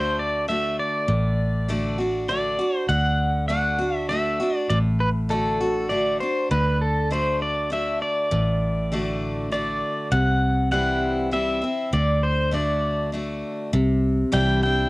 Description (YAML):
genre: honky-tonk and classic country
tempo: 100 BPM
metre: 3/4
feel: straight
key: D mixolydian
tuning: A4 = 440 Hz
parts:
  - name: pedal steel guitar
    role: melody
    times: 0.0-14.9 s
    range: A4 to G5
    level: -24 LUFS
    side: equal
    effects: cassette tape
  - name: picked steel-string acoustic guitar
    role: accompaniment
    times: 0.0-14.9 s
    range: A2 to F#4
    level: -26 LUFS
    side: equal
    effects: cassette tape
  - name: vintage muted fingered electric bass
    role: bass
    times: 0.0-14.8 s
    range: A1 to D2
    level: -24 LUFS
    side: equal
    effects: none
room: light reverb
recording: home recording on cassette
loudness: -20 LUFS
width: side -21 dB against mid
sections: 0.0-13.7 A section; 13.7-14.9 B section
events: pedal steel guitar solo 13.7-14.9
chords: 0.0 D; 10.1 C; 11.9 D; 13.7 Cadd9